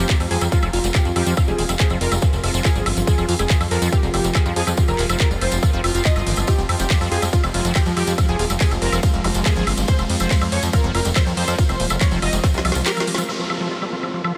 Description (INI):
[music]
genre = psychedelic trance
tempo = 141 BPM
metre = 4/4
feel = straight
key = F minor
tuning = A4 = 440 Hz
[part]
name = unison lead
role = melody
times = 0.0-13.1 s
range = F4 to Eb5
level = -30 LUFS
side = equal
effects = phaser, sidechain pumping, diffuse ambient delay
[part]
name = evolving wavetable pad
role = sustained chords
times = 0.1-14.4 s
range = F3 to F4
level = -32 LUFS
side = equal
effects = none
[part]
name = liquid acid bass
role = riff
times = 0.0-14.4 s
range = Eb3 to G4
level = -29 LUFS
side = equal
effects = chorus, vintage 12-bit sampler grit, sidechain pumping, tape echo
[part]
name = fat analog bass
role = bass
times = 0.0-12.8 s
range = Eb1 to F2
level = -25 LUFS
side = equal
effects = none
[part]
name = airy breathy pad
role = texture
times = 0.0-14.4 s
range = C4 to F6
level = -33 LUFS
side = equal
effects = chorus, sidechain pumping
[part]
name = drum and bass drum kit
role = drums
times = 0.1-14.3 s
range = handclaps, hi-hat, ride cymbal, snare drum, woodblock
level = -27 LUFS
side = equal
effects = low-pass filter on hats, low-pass filter on perc, low-pass filter on snare, low-pass filter on cymbals, low-pass filter on room
[part]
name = electronic kick drum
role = drums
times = 0.1-12.5 s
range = none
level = -20 LUFS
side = equal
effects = none
[part]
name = tambourine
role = percussion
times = 0.1-13.3 s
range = none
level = -34 LUFS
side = equal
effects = none
[part]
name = zap and downlifter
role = sound effects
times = 9.2-9.4, 13.3-14.4 s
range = none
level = -35 LUFS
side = equal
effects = none
[sound]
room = moderate huge ambient reverb, RT60 6.6 s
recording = dreamy mix soaked in reverb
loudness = -19 LUFS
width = mono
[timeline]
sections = 0.0-13.3 A section; 13.3-14.4 B section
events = drop 0.0-13.3; drum fill 12.4-13.3; band accent 13.1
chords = 0.0 F5